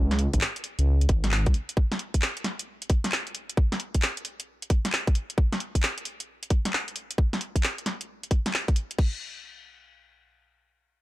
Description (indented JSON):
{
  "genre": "UK garage, two-step garage",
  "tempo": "133 BPM",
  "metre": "4/4",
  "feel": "swing 66% on 16ths",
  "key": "unclear",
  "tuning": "A4 = 440 Hz",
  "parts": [
    { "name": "dark detuned saw bass", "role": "bass", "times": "0.0-1.5 s", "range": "Ab1 to Db2", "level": "-23 LUFS", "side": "equal", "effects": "tube saturation, sidechain pumping" },
    { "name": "garage drum kit", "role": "drums", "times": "0.1-9.1 s", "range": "crash cymbal, handclaps, hi-hat, snare drum", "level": "-28 LUFS", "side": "equal", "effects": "none" },
    { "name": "electronic kick drum", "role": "drums", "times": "0.3-9.1 s", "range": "none", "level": "-22 LUFS", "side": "equal", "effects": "none" }
  ],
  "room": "little or no reverb",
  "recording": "none",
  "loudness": "-24 LUFS",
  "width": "side -17 dB against mid",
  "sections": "0.0-9.0 A section; 9.0-11.0 B section",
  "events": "none",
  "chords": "none",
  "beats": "0.41 0.87 1.32 | 1.77 2.22 2.67 3.12 | 3.57 4.02 4.47 4.93 | 5.38 5.83 6.28 6.73 | 7.18 7.63 8.08 8.54 | 8.99"
}